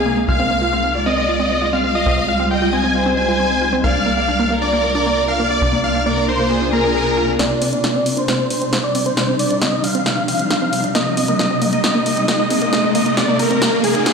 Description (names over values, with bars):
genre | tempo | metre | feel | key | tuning
uplifting trance | 135 BPM | 4/4 | straight | C minor | A4 = 438 Hz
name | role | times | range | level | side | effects
big supersaw lead | melody | 0.0-14.1 s | Ab4 to Ab5 | -19 LUFS | equal | low-pass filter, digital delay
clear chamber violin section | second line | 0.0-7.3 s | Ab4 to F5 | -23 LUFS | left 2 dB | digital delay
shimmering ambient pad | sustained chords | 0.0-14.1 s | C3 to F4 | -22 LUFS | equal | chorus, built-in reverb
tight sequencer bass | bass | 0.0-7.4 s | C2 | -24 LUFS | equal | none
wide unison pluck | arpeggios | 0.1-14.1 s | Bb3 to Bb4 | -22 LUFS | right 1 dB | digital delay
punchy analog drum machine | drums | 7.4-14.1 s | hi-hat, snare drum | -21 LUFS | equal | high-pass filter on cymbals, high-pass filter on snare, high-pass filter on hats
riser | sound effects | 9.1-14.1 s | none | -24 LUFS | equal | none
room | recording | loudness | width
light reverb | played on a big sound system in a bare room, stone room reverb | -15 LUFS | side -5 dB against mid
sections
0.0-7.4 A section; 7.4-14.1 B section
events
filter sweep on synth arpeggio sound 0.0-7.4; build-up 7.4-14.1; drum fill 7.4-14.1; filter sweep on supersaw synth 7.4-14.1; riser 9.1-14.1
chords
0.3 Fmadd9/C; 3.8 Bb/C; 7.4 Cmadd9; 10.9 Abadd9/C